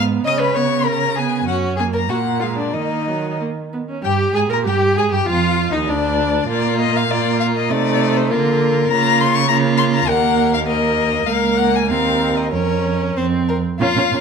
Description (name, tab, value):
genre	quick classical-period movement for string quartet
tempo	91-102 BPM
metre	2/4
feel	rubato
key	Eb minor, Bb minor from 8.9 s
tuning	A4 = 440 Hz
part	dark violin	melody	0.0-14.2 s	Bb4 to D#6	-20 LUFS	left 10 dB	none
part	rich violin	second line	0.0-14.2 s	D4 to D#5	-22 LUFS	left 3 dB	none
part	rich viola	accompaniment	0.0-14.2 s	Gb3 to Bb4	-21 LUFS	right 4 dB	none
part	dark cello	bass	0.0-14.2 s	Db2 to Eb3	-21 LUFS	right 6 dB	none
room	moderate large studio reverb, RT60 1.3 s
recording	none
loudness	-15 LUFS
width	side -6 dB against mid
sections	0.0-4.0 A section; 4.0-13.8 B section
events	none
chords	0.3 Bmaj7sus2/C#; 1.5 Gb; 2.1 Bb7b13; 2.7 Ebm; 4.0 Gm; 5.3 Ebsus2; 5.9 N.C.; 6.5 Bb5; 7.7 Adim/C; 8.3 Bb/D; 8.9 Bbm/Db; 10.1 Eb5; 11.3 Bbm/Db; 11.9 Bbsus24/Eb; 12.5 Bbm/F; 13.2 F5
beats	| 0.26 0.86 | 1.48 2.10 | 2.74 3.40 | 4.05 4.66 | 5.28 5.89 | 6.50 7.11 | 7.71 8.31 | 8.90 9.49 | 10.08 10.67 | 11.28 11.89 | 12.52 13.16 | 13.81